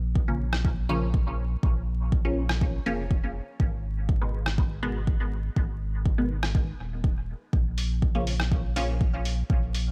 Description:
dub techno; 122 BPM; 4/4; straight; Bb phrygian; A4 = 440 Hz
warm sub bass; bass; 0.0-9.9 s; Eb1 to Bb1; -31 LUFS; equal; sidechain pumping
electronic kick drum; drums; 0.2-9.6 s; -28 LUFS; equal; overdrive, small room ambience
filtered dub chord stab; stabs; 0.3-8.9 s; Cb3 to Db4; -35 LUFS; equal; phaser, sidechain pumping, dub echo
lo-fi sampler-style drum kit; drums; 0.5-9.8 s; hi-hat, rim click; -35 LUFS; equal; small room ambience, dub echo
little or no reverb; vinyl crackle; -27 LUFS; mono
0.0-9.9 A section
0.0 Bbm; 3.6 Abm; 7.5 Bbm

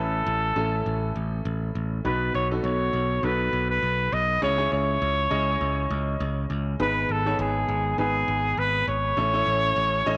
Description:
piano-driven pop; 101 BPM; 4/4; swing 56% on 16ths; A4 = 441 Hz
warm trumpet; melody; 0.0-10.2 s; G#4 to D#5; -28 LUFS; equal; slapback echo
clear concert grand piano; accompaniment; 0.0-10.2 s; G#2 to D#5; -33 LUFS; equal
modern bright picked electric bass; bass; 0.0-10.2 s; G#1 to C#2; -30 LUFS; equal
moderate echo chamber reverb, RT60 2.3 s; -25 LUFS; mono
0.0-10.2 A section
0.0 A; 2.0 B; 4.4 C#m; 6.8 G#m; 9.2 A

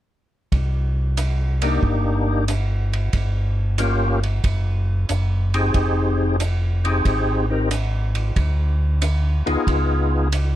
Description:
soul jazz organ trio; 92 BPM; 4/4; swing 68% on 8ths; C minor; A4 = 441 Hz
mellow tonewheel organ; bass; 0.5-10.6 s; F1 to D2; -20 LUFS; equal; chorus vibrato, slow rotary speaker
warm soul drum kit; drums; 0.5-10.5 s; hi-hat, kick drum, ride cymbal; -27 LUFS; right 1 dB
percussive tonewheel organ; melody; 1.6-10.3 s; Bb3 to Bb4; -22 LUFS; left 2 dB; slow rotary speaker, overdrive, chorus vibrato
light reverb; dark, warm production; -18 LUFS; side -13 dB against mid
0.5-10.6 A section
0.5 Cm7; 3.1 Gm7b5; 4.4 F#sus2; 5.8 Fm7; 8.4 Ddim; 9.7 Db9

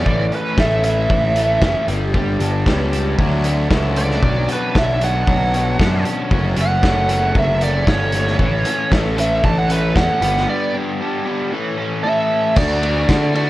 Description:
indie rock; 115 BPM; 4/4; straight; D major; A4 = 440 Hz
biting lead guitar; melody; 0.0-13.5 s; B4 to A5; -20 LUFS; right 2 dB; overdrive, slapback echo
biting overdriven guitar; riff; 0.0-13.5 s; E3 to A4; -24 LUFS; right 5 dB; analog chorus, slapback echo
overdriven semi-hollow guitar; riff; 0.0-13.5 s; F#2 to A4; -24 LUFS; left 5 dB
fuzz picked electric bass; bass; 0.0-13.5 s; F#1 to D3; -19 LUFS; equal; overdrive
loose indie drum kit; drums; 0.1-13.5 s; crash cymbal, hi-hat, kick drum, ride cymbal, snare drum; -20 LUFS; equal
light reverb; worn, warbling old tape, cassette tape, warbly pitch drift; -15 LUFS; side -16 dB against mid
0.0-12.6 A section
lead electric guitar solo 0.0-12.6; break 10.5-12.6
0.0 F#m (rootless); 1.9 G; 3.2 Dadd9; 4.2 Bmadd9; 6.3 F#m; 8.4 A; 10.2 G; 11.5 A; 12.6 D

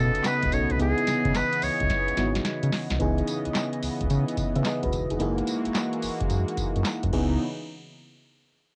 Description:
R&B, new jack swing; 109 BPM; 4/4; swing 66% on 16ths; C# minor; A4 = 440 Hz
trumpet with metal mute; melody; 0.0-2.5 s; G#4 to C#5; -30 LUFS; equal; cassette tape, analog delay
FM electric piano; accompaniment; 0.0-7.4 s; A#3 to E5; -33 LUFS; equal; cassette tape
brassy analog pad; sustained chords; 0.0-7.4 s; C#3 to D#5; -33 LUFS; equal; chorus, cassette tape
round analog bass; bass; 0.0-7.4 s; E1 to C#3; -29 LUFS; equal
booming analog drum machine; drums; 0.1-7.3 s; crash cymbal, handclaps, hi-hat, kick drum, snare drum, tambourine; -33 LUFS; equal
wet booth ambience, RT60 0.2 s; home recording on cassette; -26 LUFS; mono
0.0-3.0 A section; 3.0-7.4 B section; 7.4-8.8 C section
drum fill 1.9-3.0
0.0 B9; 0.8 C#m9; 5.2 F#13; 7.1 C#m9; 7.4 N.C.

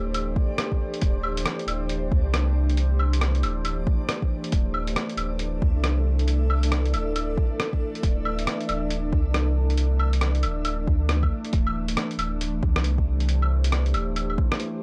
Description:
future garage; 137 BPM; 4/4; swing 62% on 16ths; A4 = 444 Hz
warbly tape-like pad; sustained chords; 0.0-14.8 s; E3 to D5; -33 LUFS; equal; chorus, built-in reverb, phaser, sidechain pumping
warm sub bass; bass; 0.0-14.4 s; D1 to D2; -26 LUFS; equal; sidechain pumping
backwards swelling texture; texture; 0.1-11.6 s; D4 to E5; -43 LUFS; equal; built-in reverb
lo-fi sampler-style drum kit; drums; 0.1-14.7 s; claves, hi-hat, rim click; -31 LUFS; equal
electronic kick drum; drums; 0.4-14.5 s; -26 LUFS; equal; overdrive
little or no reverb; dry, gritty hardware recording; -24 LUFS; mono
0.0-11.5 A section; 11.5-14.8 A section
0.0 Dsus2

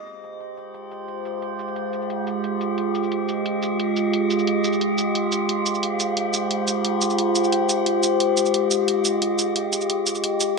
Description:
dark technical drum and bass; 177 BPM; 4/4; straight; F minor; A4 = 439 Hz
metallic inharmonic drone; sustained chords; 0.0-10.6 s; Ab3 to Eb5; -21 LUFS; equal; chorus, built-in reverb, phaser, sidechain pumping
electronic hi-hat and shaker; drums; 0.1-10.5 s; -26 LUFS; right 2 dB; low-pass filter on hats, low-pass filter on perc, low-pass filter on snare
moderate plate reverb, RT60 1.8 s, small room ambience; -20 LUFS; side -3 dB against mid
0.0-10.6 A section
filter sweep on drum 0.0-10.6
0.0 Fmadd9

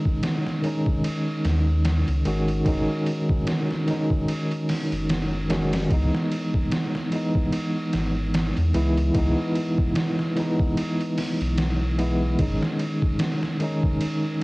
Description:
trip hop; 74 BPM; 4/4; swing 57% on 16ths; C# minor; A4 = 440 Hz
tine electric piano; accompaniment; 0.0-14.4 s; D#3 to F#4; -24 LUFS; equal; tremolo, tape echo
trip hop sampler-style drum kit; drums; 0.1-14.4 s; hi-hat, kick drum, ride cymbal, snare drum; -27 LUFS; equal; overdrive, cassette tape
warm sub bass; bass; 1.4-12.6 s; F#1 to E2; -24 LUFS; equal; tube saturation
little or no reverb; home recording on cassette; -21 LUFS; side -22 dB against mid
0.0-14.4 A section
0.0 G#sus4; 5.9 C#m7 (rootless); 12.4 G#sus4

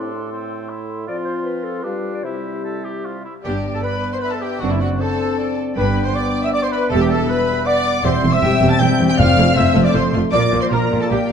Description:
quick classical-period movement for symphony orchestra; 156 BPM; 3/4; rubato; C major, G major from 3.5 s, F major from 8.1 s; A4 = 440 Hz
hollow small flute group; second line; 0.0-11.3 s; E4 to C6; -27 LUFS; left 3 dB
warm clarinet; second line; 0.0-11.3 s; A4 to G5; -28 LUFS; left 1 dB
warm oboe; second line; 0.0-11.2 s; C4 to A5; -27 LUFS; right 2 dB
dark bassoon; accompaniment; 0.0-3.3 s; A2 to G3; -29 LUFS; equal
mellow French horn section; sustained chords; 0.0-11.3 s; G3 to F4; -23 LUFS; left 5 dB
rich chamber violin section; second line; 3.4-11.2 s; E4 to A5; -27 LUFS; left 2 dB
dark trumpet section; stabs; 3.4-11.3 s; E4 to A5; -25 LUFS; right 1 dB
rich symphonic cello section; bass; 3.4-11.2 s; E2 to Bb2; -23 LUFS; right 3 dB
warm symphonic violin section; melody; 3.5-11.3 s; E5 to A6; -26 LUFS; left 2 dB
rich chamber viola section; accompaniment; 3.5-11.2 s; F3 to G4; -24 LUFS; right 1 dB
rich chamber double bass section; bass; 3.5-11.2 s; E1 to Bb1; -22 LUFS; right 4 dB
timpani; percussion; 9.2-9.7 s; F2; -21 LUFS; right 1 dB
moderate scoring stage reverb, RT60 1.8 s; dark, warm production; -16 LUFS; side -7 dB against mid
0.0-3.5 A section; 3.5-11.3 B section
0.0 Am; 1.1 F; 1.9 G7; 2.3 C; 3.5 G; 4.6 D7/F#; 5.8 G; 6.9 Em; 8.1 C/E; 9.2 F; 10.3 Bb

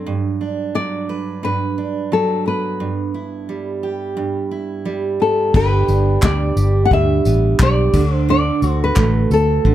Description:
acoustic pop; 88 BPM; 4/4; swing 55% on 16ths; G major; A4 = 440 Hz
picked steel-string acoustic guitar; accompaniment; 0.0-9.7 s; G2 to B4; -20 LUFS; right 5 dB
nylon-string guitar; melody; 0.8-9.7 s; A4 to F#5; -20 LUFS; left 4 dB; plate reverb
vintage muted fingered electric bass; bass; 5.5-9.7 s; G1 to D2; -16 LUFS; left 1 dB
unplugged drum kit; drums; 5.5-9.7 s; crash cymbal, handclaps, kick drum, tambourine; -19 LUFS; left 1 dB
group handclap; percussion; 6.2-9.1 s; -32 LUFS; right 1 dB
light reverb; -15 LUFS; side -12 dB against mid
0.0-5.5 A section; 5.5-9.7 B section
0.1 Gmaj7; 2.8 Em/G; 5.5 G; 7.9 D

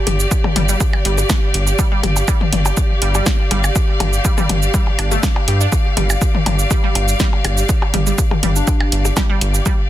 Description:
minimal techno; 122 BPM; 4/4; straight; A4 = 440 Hz
warm studio string section; texture; 0.0-9.9 s; G4 to F5; -23 LUFS; left 1 dB; sidechain pumping
soft struck synth lead; melody; 0.1-0.3, 7.9-8.9 s; D4 to G4; -28 LUFS; left 3 dB; chorus, tape echo
rubbery square bass; bass; 0.1-9.6 s; G1 to G2; -17 LUFS; equal; tube saturation, sidechain pumping
punchy analog drum machine; drums; 0.1-9.8 s; cabasa, hi-hat, snare drum; -22 LUFS; right 3 dB; overdrive
electronic toms and percussion blips; percussion; 0.1-9.8 s; -23 LUFS; left 4 dB; tape echo
electronic kick drum; drums; 0.3-9.8 s; -18 LUFS; equal; overdrive
resonant blip pluck; riff; 0.6-9.7 s; G3 to G4; -27 LUFS; right 3 dB; chorus, phaser, sidechain pumping, tape echo
little or no reverb; dense, heavily limited modern master; -14 LUFS; side -13 dB against mid
0.0-9.9 A section
0.0 G5

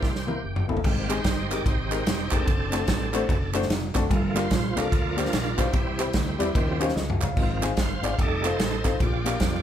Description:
uptempo gospel; 147 BPM; 4/4; swing 63% on 8ths; A4 = 440 Hz
bright tonewheel organ; sustained chords; 0.0-9.6 s; Db3 to F5; -30 LUFS; right 3 dB; slow rotary speaker, chorus vibrato
fingered electric bass; bass; 0.0-9.6 s; E1 to F2; -31 LUFS; equal
natural country drum kit; drums; 0.0-9.5 s; crash cymbal, kick drum, ride cymbal, snare drum, splash cymbal, toms; -26 LUFS; equal
warm baby grand piano; accompaniment; 0.3-9.6 s; G2 to F5; -28 LUFS; left 3 dB
group handclap; percussion; 1.1-9.3 s; -35 LUFS; right 6 dB
moderate large studio reverb, RT60 0.8 s; band playing live in one room; -22 LUFS; side -10 dB against mid
0.8-9.6 A section
drum fill 0.0-0.8, 7.0-7.4; tonewheel organ solo 0.8-9.6
0.0 C7; 0.8 Abmaj7; 2.5 D7/F#; 4.1 Gm7; 5.7 C; 6.6 Eb13; 7.4 Ab6; 8.2 F7; 9.0 Bb6

